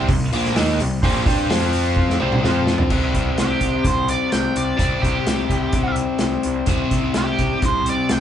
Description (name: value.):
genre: blues rock power trio and southern rock.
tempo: 127 BPM.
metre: 4/4.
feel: straight.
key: unclear.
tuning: A4 = 440 Hz.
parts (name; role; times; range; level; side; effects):
overdriven tonewheel organ; sustained chords; 0.0-2.8 s; F3 to C5; -28 LUFS; right 4 dB; slow rotary speaker, chorus vibrato.
biting overdriven guitar; riff; 0.0-8.2 s; Bb2 to G4; -21 LUFS; left 2 dB; none.
fuzz picked electric bass; bass; 0.0-8.2 s; Bb1 to G2; -25 LUFS; equal; overdrive.
vintage drum kit; drums; 0.1-8.2 s; crash cymbal, hi-hat, kick drum, snare drum, toms; -21 LUFS; equal; none.
octave-fuzz lead guitar; melody; 3.4-8.2 s; G4 to G5; -23 LUFS; right 3 dB; wah, distortion.
room: moderate studio reverb, RT60 0.5 s.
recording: band playing live in one room, nothing above 10.4 kHz.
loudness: -17 LUFS.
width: side -10 dB against mid.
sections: 0.0-2.9 A section; 2.9-8.2 B section.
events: drum fill 2.0-2.9.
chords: 0.0 C5; 1.5 F5; 2.2 C5; 2.4 F5; 2.9 C5.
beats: 0.09 0.56 | 1.02 1.49 1.96 2.43 | 2.90 3.37 3.84 4.32 | 4.79 5.26 5.73 6.21 | 6.68 7.15 7.63 8.10.